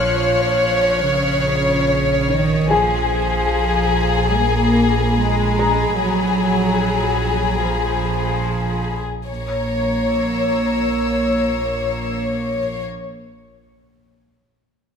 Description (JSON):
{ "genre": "cinematic, suspense film score", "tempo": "73 BPM", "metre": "4/4", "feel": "straight", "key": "Bb minor", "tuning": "A4 = 441 Hz", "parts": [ { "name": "warm chamber violin section", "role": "melody", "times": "0.0-12.8 s", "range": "Ab4 to Db5", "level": "-20 LUFS", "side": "left 3 dB", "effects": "none" }, { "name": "rich symphonic double bass section", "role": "bass", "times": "0.0-12.8 s", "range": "Bb1", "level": "-24 LUFS", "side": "right 2 dB", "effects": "none" }, { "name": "warm symphonic cello section", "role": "bass", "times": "0.0-12.8 s", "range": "Db3 to Bb3", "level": "-22 LUFS", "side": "right 2 dB", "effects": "none" }, { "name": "felt-muted upright piano", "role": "texture", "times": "0.0-9.3 s", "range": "Ab4 to F6", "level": "-26 LUFS", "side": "left 2 dB", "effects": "none" }, { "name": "warm symphonic violin section", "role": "texture", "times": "0.0-12.1 s", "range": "Ab5 to C7", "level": "-29 LUFS", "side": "left 3 dB", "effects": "none" } ], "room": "moderate scoring stage reverb, RT60 2.0 s", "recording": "none", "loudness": "-16 LUFS", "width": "side -7 dB against mid", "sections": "0.0-9.3 A section; 9.3-12.6 B section", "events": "none", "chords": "0.0 Bbm; 2.7 Fm/Bb; 9.3 Bbm" }